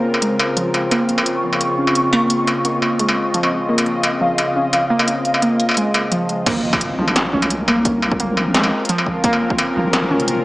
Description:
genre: half-time drum and bass.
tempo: 173 BPM.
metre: 4/4.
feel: half-time.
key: Bb minor.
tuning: A4 = 440 Hz.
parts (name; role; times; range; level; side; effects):
bowed-like drone; sustained chords; 0.0-10.4 s; Db3 to Eb5; -22 LUFS; left 1 dB; built-in reverb, sidechain pumping.
warbly dusty pluck; arpeggios; 0.0-10.3 s; F3 to Db4; -20 LUFS; equal; chorus, phaser, digital delay.
pulsing gated texture; texture; 0.0-6.5 s; C5 to Db6; -22 LUFS; equal; chorus, built-in reverb.
industrial drum kit; drums; 0.1-10.4 s; crash cymbal, hi-hat, snare drum, struck metal; -20 LUFS; equal; none.
deep soft wobble bass; bass; 6.5-10.4 s; F1 to C2; -23 LUFS; equal; chorus.
electronic kick drum; drums; 6.5-9.6 s; none; -23 LUFS; equal; none.
impact; sound effects; 6.5-7.9 s; none; -32 LUFS; equal; none.
room: wet lush hall reverb, RT60 1.6 s.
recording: small speaker sound.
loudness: -15 LUFS.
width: side -19 dB against mid.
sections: 0.0-6.5 A section; 6.5-10.4 B section.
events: filter sweep on synth pluck 0.0-6.5; drop 6.5-10.4; impact 6.5-7.9.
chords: 0.0 Bbmadd9.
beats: 0.22 0.57 | 0.92 1.26 1.61 1.96 | 2.30 2.65 3.00 3.34 | 3.69 4.04 4.38 4.73 | 5.08 5.42 5.77 6.12 | 6.46 6.81 7.16 7.50 | 7.85 8.20 8.54 8.89 | 9.24 9.59 9.93 10.28.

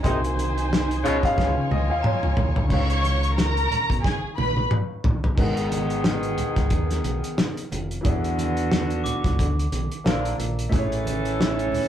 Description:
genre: lush 1970s-style soul.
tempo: 90 BPM.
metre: 4/4.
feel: swing 58% on 16ths.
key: G# dorian.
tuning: A4 = 438 Hz.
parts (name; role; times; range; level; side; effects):
warm symphonic string section; second line; 0.0-4.6 s; D#4 to C#6; -27 LUFS; equal; none.
warm baby grand piano; accompaniment; 0.0-11.9 s; C#3 to F#5; -30 LUFS; left 1 dB; none.
warm horn section; stabs; 0.0-11.9 s; B2 to A4; -26 LUFS; equal; none.
fingered electric bass; bass; 0.0-11.8 s; E#1 to C#3; -26 LUFS; equal; none.
cloth-damped thuddy drum kit; drums; 0.0-11.9 s; crash cymbal, hi-hat, kick drum, snare drum, toms; -25 LUFS; equal; none.
congas; percussion; 0.0-11.9 s; none; -33 LUFS; right 2 dB; none.
glockenspiel with brass mallets; texture; 0.0-10.3 s; A#5 to E#6; -38 LUFS; left 2 dB; none.
room: wet small room reverb, RT60 0.5 s.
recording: rough rehearsal-room recording.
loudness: -21 LUFS.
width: side -10 dB against mid.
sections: 0.0-2.7 A section; 2.7-5.4 B section; 5.4-11.9 C section.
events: grand piano solo 0.0-2.7; band accent 0.0-2.7; drum fill 1.4-2.7, 4.0-5.4.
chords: 0.0 G#7/B#; 1.4 C#7; 5.4 G#m7; 8.0 E7; 10.1 A#maj7; 10.7 Amaj7.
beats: | 0.04 0.70 1.37 2.04 | 2.71 3.37 4.04 4.71 | 5.38 6.04 6.71 7.38 | 8.05 8.71 9.38 10.05 | 10.72 11.39.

